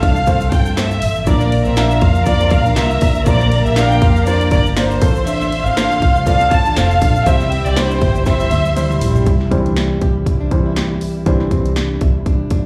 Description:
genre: piano-driven pop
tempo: 120 BPM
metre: 4/4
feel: swing 56% on 16ths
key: unclear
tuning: A4 = 443 Hz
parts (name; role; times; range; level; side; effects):
- warm studio violin section; melody; 0.0-9.0 s; C5 to A5; -21 LUFS; equal; slapback echo, tape echo
- warm studio violin section; second line; 0.0-9.2 s; G4 to C6; -29 LUFS; equal; slapback echo
- clear upright piano; accompaniment; 0.0-12.7 s; A2 to F5; -23 LUFS; equal; slapback echo
- dark studio string section; sustained chords; 0.0-12.7 s; C3 to G4; -32 LUFS; equal; none
- fingerpicked plugged-in steel-string acoustic guitar; riff; 0.0-12.6 s; Bb3 to G4; -29 LUFS; equal; slapback echo
- vintage muted fingered electric bass; bass; 0.0-12.7 s; F1 to G2; -20 LUFS; equal; none
- house drum kit; drums; 0.0-12.6 s; hi-hat, kick drum, ride cymbal, snare drum, toms; -20 LUFS; equal; none
- tube shaker; percussion; 0.2-9.3 s; none; -44 LUFS; equal; none
room: light reverb, studio ambience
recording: live gig heard through the venue's PA, club reverb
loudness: -15 LUFS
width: mono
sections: 0.0-9.3 A section; 9.3-12.7 B section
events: drum fill 8.3-9.3; upright piano solo 9.3-12.7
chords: 0.0 F; 1.3 Bb; 5.0 F/A; 7.3 C

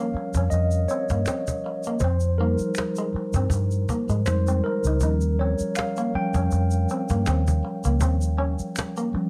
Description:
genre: R&B, neo-soul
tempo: 80 BPM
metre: 4/4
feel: swing 55% on 16ths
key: unclear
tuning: A4 = 440 Hz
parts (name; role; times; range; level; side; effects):
- electric guitar through a small old amp; second line; 0.0-9.2 s; Ab3 to Eb4; -33 LUFS; equal; plate reverb
- mellow tine electric piano; accompaniment; 0.0-9.3 s; F3 to G5; -29 LUFS; equal; none
- vintage muted fingered electric bass; bass; 0.1-9.2 s; Db2 to Ab2; -24 LUFS; equal; none
- cajon; drums; 0.1-9.2 s; none; -32 LUFS; equal; none
- tube shaker and finger snaps; percussion; 0.3-9.1 s; none; -40 LUFS; equal; none
room: light reverb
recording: none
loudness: -24 LUFS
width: mono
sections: 0.0-9.3 A section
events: tine electric piano solo 0.0-9.3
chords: 0.0 Eb7; 2.0 Fm7; 5.0 Eb7

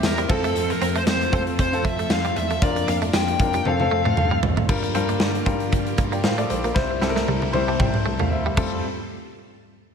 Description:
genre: 1980s-style pop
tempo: 116 BPM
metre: 4/4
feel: swing 55% on 16ths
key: F major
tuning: A4 = 440 Hz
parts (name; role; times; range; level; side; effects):
- clear concert grand piano; accompaniment; 0.0-8.9 s; G3 to C6; -26 LUFS; left 3 dB; none
- phased string machine; sustained chords; 0.0-8.8 s; D3 to A4; -30 LUFS; left 1 dB; ensemble chorus, phaser
- bell-like tine electric piano; bass; 0.0-8.8 s; Bb1 to A2; -28 LUFS; equal; lush chorus
- big rock drum kit; drums; 0.0-8.7 s; crash cymbal, hi-hat, kick drum, snare drum, tambourine, toms; -24 LUFS; right 1 dB; gated reverb
- dark smooth lead guitar; melody; 0.1-4.4 s; A4 to G5; -25 LUFS; left 2 dB; overdrive
- direct-recorded clean electric guitar; riff; 0.2-8.7 s; G3 to C4; -31 LUFS; right 5 dB; wide subtle chorus, tape echo
room: light reverb, small room ambience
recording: none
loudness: -19 LUFS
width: side -6 dB against mid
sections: 0.0-4.7 A section; 4.7-8.8 B section; 8.8-9.9 C section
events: drum fill 3.7-4.7, 6.8-8.8; grand piano fill 7.3-8.8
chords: 0.3 F; 2.6 Bb/F; 3.7 F; 4.7 Gm7; 6.8 C; 8.6 Fadd9; 8.8 N.C.

